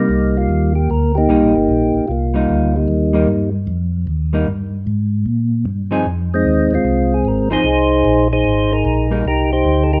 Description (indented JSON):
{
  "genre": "soul jazz organ trio",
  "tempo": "151 BPM",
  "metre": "4/4",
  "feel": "swing 64% on 8ths",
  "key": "C minor",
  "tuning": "A4 = 440 Hz",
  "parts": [
    { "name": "percussive tonewheel organ", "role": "melody", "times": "0.0-3.5, 6.3-10.0 s", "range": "G3 to C5", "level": "-18 LUFS", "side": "equal", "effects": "slow rotary speaker" },
    { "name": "hollow-body jazz guitar", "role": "accompaniment", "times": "0.0-9.2 s", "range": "F3 to Ab4", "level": "-24 LUFS", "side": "equal", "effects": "none" },
    { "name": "mellow tonewheel organ", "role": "bass", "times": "0.0-10.0 s", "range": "G1 to Bb2", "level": "-20 LUFS", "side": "equal", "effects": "chorus vibrato, slow rotary speaker" }
  ],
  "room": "moderate large studio reverb, RT60 1.1 s",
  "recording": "none",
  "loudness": "-16 LUFS",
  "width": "mono",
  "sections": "0.0-10.0 A section",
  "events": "none",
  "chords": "0.0 Cm7; 6.1 Fm7; 9.3 Cm7"
}